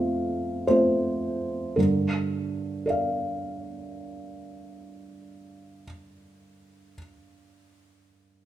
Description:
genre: neoclassical minimalist piano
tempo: 55 BPM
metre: 3/4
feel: rubato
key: G minor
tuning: A4 = 438 Hz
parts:
  - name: felt-muted upright piano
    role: solo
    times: 0.0-8.5 s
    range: F2 to F5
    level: -25 LUFS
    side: right 1 dB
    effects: none
room: moderate recital hall reverb, RT60 1.4 s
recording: minimal, uncompressed stereo recording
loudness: -24 LUFS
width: side -12 dB against mid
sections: 0.0-1.8 A section; 1.8-8.3 B section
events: slowing down 0.0-1.8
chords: 0.0 F; 1.8 Gm7

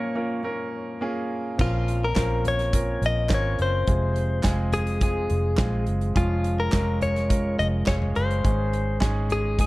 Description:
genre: piano-driven pop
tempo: 105 BPM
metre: 4/4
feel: straight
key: unclear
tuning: A4 = 440 Hz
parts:
  - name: direct-recorded clean electric guitar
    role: melody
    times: 0.0-9.7 s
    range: F4 to Eb5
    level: -28 LUFS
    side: left 3 dB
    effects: spring reverb
  - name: clear baby grand piano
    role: accompaniment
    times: 0.0-9.7 s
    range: Ab2 to Bb4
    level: -28 LUFS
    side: right 1 dB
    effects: none
  - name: vintage muted fingered electric bass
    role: bass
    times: 1.6-9.7 s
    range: F1 to Bb1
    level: -25 LUFS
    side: equal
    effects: none
  - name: natural country drum kit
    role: drums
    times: 1.6-9.7 s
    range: crash cymbal, handclaps, hi-hat, kick drum, snare drum, toms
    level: -25 LUFS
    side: equal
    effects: none
room: light reverb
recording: dry, close 1970s-style studio recording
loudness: -22 LUFS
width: side -19 dB against mid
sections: 0.0-1.6 A section; 1.6-9.7 B section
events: break 0.0-1.6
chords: 0.0 Bbm; 1.6 Bbmadd9; 3.9 Fm; 6.2 Db/F; 8.4 Absus4

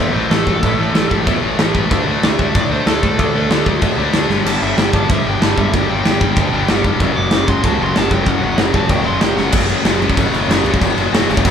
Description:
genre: punk rock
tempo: 189 BPM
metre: 4/4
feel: straight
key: unclear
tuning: A4 = 439 Hz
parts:
  - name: biting lead guitar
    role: melody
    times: 0.0-9.5 s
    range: A4 to D6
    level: -24 LUFS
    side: right 1 dB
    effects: overdrive, ping-pong delay
  - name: distorted electric guitar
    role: riff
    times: 0.0-11.5 s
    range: F#2 to D4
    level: -18 LUFS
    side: left 2 dB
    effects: distortion
  - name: overdriven picked electric bass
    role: bass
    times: 0.0-11.5 s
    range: E1 to A2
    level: -22 LUFS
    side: equal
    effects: none
  - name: big rock drum kit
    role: drums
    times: 0.3-11.5 s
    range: crash cymbal, kick drum, snare drum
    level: -16 LUFS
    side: equal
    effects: none
room: little or no reverb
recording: band playing live in one room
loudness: -13 LUFS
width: side -8 dB against mid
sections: 0.0-9.5 A section; 9.5-11.5 B section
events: drum fill 4.3, 9.4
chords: 0.0 A5; 1.9 D5; 4.3 G5; 7.0 F#5

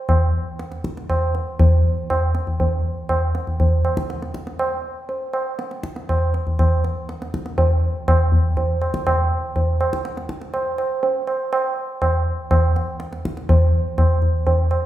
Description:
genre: indian classical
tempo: 121 BPM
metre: 3/4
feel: straight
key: none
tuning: none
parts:
  - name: tabla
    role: percussion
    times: 0.1-14.9 s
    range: none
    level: -18 LUFS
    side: equal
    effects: none
room: wet recital hall reverb, RT60 1.6 s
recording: recorded in a church or concert hall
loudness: -18 LUFS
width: side -13 dB against mid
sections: 0.0-7.6 A section; 7.6-14.9 B section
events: speeding up 0.0-14.9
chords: none

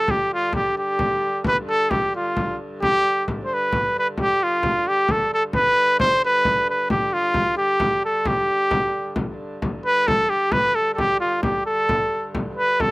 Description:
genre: medieval dance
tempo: 88 BPM (dotted quarters)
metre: 6/8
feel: straight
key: G mixolydian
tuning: A4 = 440 Hz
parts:
  - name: clear trumpet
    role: melody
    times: 0.0-12.9 s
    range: F4 to C5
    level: -19 LUFS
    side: equal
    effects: none
  - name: warm hurdy-gurdy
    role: drone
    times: 0.0-12.9 s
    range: G2 to D3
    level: -34 LUFS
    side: equal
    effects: none
  - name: frame drum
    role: percussion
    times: 0.1-12.9 s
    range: none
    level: -26 LUFS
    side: left 1 dB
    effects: none
room: little or no reverb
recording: recorded outdoors, with no room sound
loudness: -18 LUFS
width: side -23 dB against mid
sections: 0.0-9.6 A section; 9.6-12.9 B section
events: none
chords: none

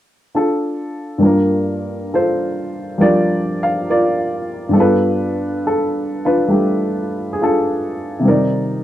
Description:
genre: jazz ballad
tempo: 68 BPM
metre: 4/4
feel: swing 69% on 8ths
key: G minor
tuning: A4 = 440 Hz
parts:
  - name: warm baby grand piano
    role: solo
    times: 0.3-8.8 s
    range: G2 to F5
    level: -15 LUFS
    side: equal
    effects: none
room: light reverb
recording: dry, close 1970s-style studio recording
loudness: -15 LUFS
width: side -12 dB against mid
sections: 0.0-1.2 A section; 1.2-8.8 B section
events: none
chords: 0.0 Dm; 1.2 Gm9; 4.7 G7; 8.2 Cm9

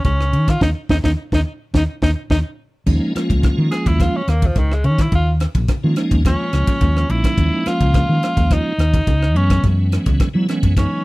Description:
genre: electric jazz fusion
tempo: 106 BPM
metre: 4/4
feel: straight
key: Eb minor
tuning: A4 = 441 Hz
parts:
  - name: bright tenor saxophone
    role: melody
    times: 0.0-11.0 s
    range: Eb3 to Ab4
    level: -23 LUFS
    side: equal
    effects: slapback echo
  - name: woody fretless electric bass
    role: bass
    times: 0.0-10.8 s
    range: Bb1 to Gb3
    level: -17 LUFS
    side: equal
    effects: none
  - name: crisp fusion drum kit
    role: drums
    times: 0.0-10.9 s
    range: crash cymbal, kick drum, ride cymbal, rim click, snare drum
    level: -19 LUFS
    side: equal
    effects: none
  - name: tonewheel organ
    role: accompaniment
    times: 0.6-11.0 s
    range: Fb3 to F4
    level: -21 LUFS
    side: right 1 dB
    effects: slow rotary speaker, chorus vibrato
room: little or no reverb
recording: none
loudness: -15 LUFS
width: side -21 dB against mid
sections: 0.0-2.9 A section; 2.9-11.0 B section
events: drum fill 0.6-2.9; band accent 0.6-2.9; tenor saxophone solo 2.9-11.0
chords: 0.0 Eb7(no3); 2.9 Eb9sus4; 9.4 Gb9sus4

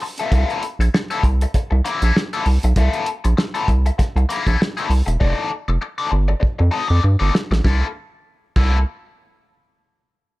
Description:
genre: funk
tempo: 98 BPM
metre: 4/4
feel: swing 56% on 16ths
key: C mixolydian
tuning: A4 = 440 Hz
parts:
  - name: cranked stack guitar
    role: accompaniment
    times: 0.0-8.8 s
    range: Bb3 to Eb5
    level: -23 LUFS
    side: left 4 dB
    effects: wah, overdrive, plate reverb
  - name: cloth-damped thuddy drum kit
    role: drums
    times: 0.0-8.7 s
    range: crash cymbal, hi-hat, kick drum, snare drum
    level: -20 LUFS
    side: equal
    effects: none
  - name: rubbery square bass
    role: bass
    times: 0.3-8.8 s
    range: E1 to G2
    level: -16 LUFS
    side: equal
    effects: none
room: little or no reverb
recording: dark, warm production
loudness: -16 LUFS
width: side -19 dB against mid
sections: 0.0-7.6 A section; 7.6-10.1 B section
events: drum fill 5.2-7.6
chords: 0.0 C6; 5.2 F13; 7.6 C6

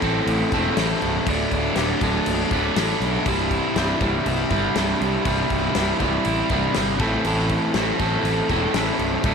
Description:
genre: classic rock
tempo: 120 BPM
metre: 4/4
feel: straight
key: unclear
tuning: A4 = 439 Hz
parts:
  - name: overdriven electric guitar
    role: riff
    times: 0.0-9.3 s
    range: C2 to A4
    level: -21 LUFS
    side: right 1 dB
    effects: none
  - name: fuzz fingered electric bass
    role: bass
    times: 0.0-9.3 s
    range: C1 to C2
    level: -26 LUFS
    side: equal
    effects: overdrive
  - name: big rock drum kit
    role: drums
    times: 0.0-9.3 s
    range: crash cymbal, kick drum, snare drum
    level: -27 LUFS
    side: left 4 dB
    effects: none
room: studio reverb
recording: 1960s-style stereo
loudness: -19 LUFS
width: side -6 dB against mid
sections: 0.0-9.3 A section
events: none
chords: 0.0 Am; 1.3 D; 3.3 C; 7.0 Am

